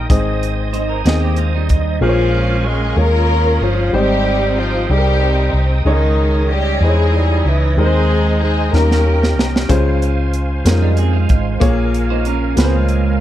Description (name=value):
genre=slow gospel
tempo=62 BPM (dotted quarters)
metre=6/8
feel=straight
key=Ab major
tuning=A4 = 440 Hz
part: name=clear upright piano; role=accompaniment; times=0.0-13.2 s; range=Ab2 to C6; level=-21 LUFS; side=left 2 dB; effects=none
part: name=bright tonewheel organ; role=sustained chords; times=0.0-13.2 s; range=Bb4 to Eb6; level=-27 LUFS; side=right 4 dB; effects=fast rotary speaker, chorus vibrato
part: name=mellow French horn section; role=sustained chords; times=0.0-2.0 s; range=Eb3 to Eb4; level=-34 LUFS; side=left 3 dB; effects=none
part: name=hollow-body short-scale fingered electric bass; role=bass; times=0.0-13.2 s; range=G1 to F2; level=-16 LUFS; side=equal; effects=none
part: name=crisp fusion drum kit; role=drums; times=0.1-1.8, 8.8-13.0 s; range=hi-hat, kick drum, snare drum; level=-17 LUFS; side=equal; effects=none
part: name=clean electric guitar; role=second line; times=0.7-2.0, 10.8-13.2 s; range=G3 to C5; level=-22 LUFS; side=right 8 dB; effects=lush chorus
part: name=breathy tenor saxophone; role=melody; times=2.0-9.5 s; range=Eb3 to Bb3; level=-20 LUFS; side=right 3 dB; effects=none
part: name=warm symphonic string section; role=melody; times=2.0-9.7 s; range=Ab3 to Bb4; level=-20 LUFS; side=left 3 dB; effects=slapback echo
room=little or no reverb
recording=dark, warm production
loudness=-13 LUFS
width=side -12 dB against mid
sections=0.0-2.0 A section; 2.0-13.2 B section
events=drum fill 8.7-9.7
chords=0.1 Ab; 2.0 Bbm7; 3.0 Eb9sus4; 3.9 Abmaj7; 5.9 Dbmadd9; 7.8 Ab/Eb; 8.7 Eb7; 9.7 Dbmaj7; 11.6 Bbm7